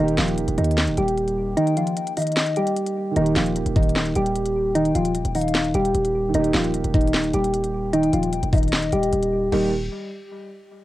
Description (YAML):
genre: hip hop, trap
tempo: 151 BPM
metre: 4/4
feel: half-time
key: Eb major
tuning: A4 = 440 Hz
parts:
  - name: soft electric-piano-like synth keys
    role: melody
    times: 0.0-9.7 s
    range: Eb3 to G4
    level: -21 LUFS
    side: equal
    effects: chorus, low-pass filter, tape echo
  - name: dark baby grand piano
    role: accompaniment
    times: 0.0-9.7 s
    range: Eb3 to G4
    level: -30 LUFS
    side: right 6 dB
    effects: low-pass filter, cassette tape
  - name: hard-hitting 808-style bass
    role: bass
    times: 0.0-9.9 s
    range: D1 to Eb2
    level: -27 LUFS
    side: equal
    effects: none
  - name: trap drum kit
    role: drums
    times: 0.1-9.6 s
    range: crash cymbal, hi-hat, kick drum, snare drum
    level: -24 LUFS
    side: equal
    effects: cassette tape
  - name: gliding portamento lead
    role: second line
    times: 1.6-9.7 s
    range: Eb5 to G5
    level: -30 LUFS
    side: left 8 dB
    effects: chorus, cassette tape, tape echo
room: light reverb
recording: home recording on cassette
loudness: -19 LUFS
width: side -16 dB against mid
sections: 0.0-9.5 A section; 9.5-10.8 B section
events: kick muted 1.6-3.2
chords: 0.0 Eb